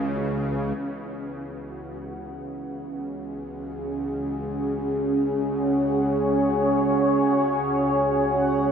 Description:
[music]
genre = dark ambient drone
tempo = free time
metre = none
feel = none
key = C# minor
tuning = A4 = 442 Hz
[part]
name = deep dark ambient pad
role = sustained chords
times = 0.0-8.7 s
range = C#4 to C#5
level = -23 LUFS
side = right 1 dB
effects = chorus, built-in reverb
[part]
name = gamelan-type bossed gongs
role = arpeggios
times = 0.0-3.7 s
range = F#4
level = -49 LUFS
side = right 3 dB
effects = none
[part]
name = bowed-like drone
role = drone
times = 0.0-8.7 s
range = C#2 to C#3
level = -31 LUFS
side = equal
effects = built-in reverb
[part]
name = bubbling stepped-filter texture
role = texture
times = 1.5-8.7 s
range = F#4 to F#5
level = -36 LUFS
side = left 1 dB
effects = chorus, built-in reverb
[sound]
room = wet huge ambient reverb, RT60 8.3 s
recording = none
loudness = -22 LUFS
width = side -7 dB against mid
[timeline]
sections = 0.8-8.7 A section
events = none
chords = 0.0 C#m7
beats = free time

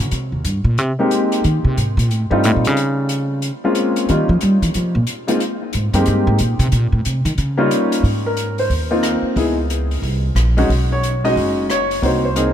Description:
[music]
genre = jazz piano trio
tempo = 182 BPM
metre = 4/4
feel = swing 64% on 8ths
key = Ab major from 8.0 s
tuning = A4 = 440 Hz
[part]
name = upright bass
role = bass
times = 0.0-12.5 s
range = F#1 to G3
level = -17 LUFS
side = equal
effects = none
[part]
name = open jazz drum kit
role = drums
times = 0.0-12.5 s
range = hi-hat, kick drum, rim click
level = -27 LUFS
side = left 1 dB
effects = none
[part]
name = warm baby grand piano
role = melody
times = 1.0-12.5 s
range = G3 to D#5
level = -19 LUFS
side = left 1 dB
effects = lush chorus, ping-pong delay
[sound]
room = moderate church reverb, RT60 3.5 s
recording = dreamy mix soaked in reverb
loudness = -15 LUFS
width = side -10 dB against mid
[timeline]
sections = 0.0-8.0 A section; 8.0-12.5 B section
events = upright bass solo 0.0-8.0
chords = 0.1 Abmaj7; 1.4 Abadd9; 2.1 F7; 2.8 Bbm7; 4.1 Eb; 5.4 Abmaj7; 6.7 Adim; 7.4 Eb7; 8.0 Ab6; 9.4 Dbm7; 10.0 Bbsus2; 10.7 B6; 12.0 Cm7b5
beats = | 0.12 0.45 0.78 1.10 | 1.44 1.76 2.10 2.42 | 2.75 3.08 3.41 3.74 | 4.07 4.40 4.73 5.06 | 5.39 5.72 6.05 6.38 | 6.71 7.04 7.37 7.70 | 8.04 8.37 8.70 9.03 | 9.36 9.69 10.02 10.36 | 10.69 11.02 11.35 11.68 | 12.01 12.35

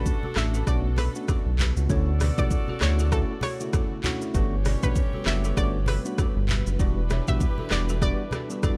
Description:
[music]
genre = afrobeats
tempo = 98 BPM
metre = 4/4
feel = swing 58% on 16ths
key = unclear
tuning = A4 = 440 Hz
[part]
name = analog pluck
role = melody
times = 0.0-8.5 s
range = A4 to E5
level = -38 LUFS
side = equal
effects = chorus, tape echo
[part]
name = clear horn section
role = second line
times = 0.0-8.8 s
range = C#4 to D5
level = -40 LUFS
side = equal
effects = none
[part]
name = tine electric piano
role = accompaniment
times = 0.0-8.8 s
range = C#3 to F#4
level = -36 LUFS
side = equal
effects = tape echo
[part]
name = dark studio string section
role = sustained chords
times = 0.0-8.8 s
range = B2 to B4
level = -42 LUFS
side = equal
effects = none
[part]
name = afro-pop drum kit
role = drums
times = 0.1-8.8 s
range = handclaps, hi-hat, kick drum, rim click, shaker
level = -29 LUFS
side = equal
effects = tape echo
[part]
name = congas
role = percussion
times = 0.1-8.8 s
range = none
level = -35 LUFS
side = equal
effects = none
[part]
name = balafon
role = riff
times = 0.2-8.7 s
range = D4 to E5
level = -41 LUFS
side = equal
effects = tape echo
[part]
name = round analog bass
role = bass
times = 0.4-8.1 s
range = E1 to D2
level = -27 LUFS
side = equal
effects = none
[sound]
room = studio reverb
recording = echo-heavy mix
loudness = -25 LUFS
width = mono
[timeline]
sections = 0.0-8.8 A section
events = none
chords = 0.0 Bm7; 1.9 Dmaj7; 4.3 Gmaj7; 6.8 Em7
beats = 0.06 0.67 1.28 | 1.90 2.51 3.12 3.73 | 4.34 4.96 5.57 6.18 | 6.79 7.41 8.02 8.63

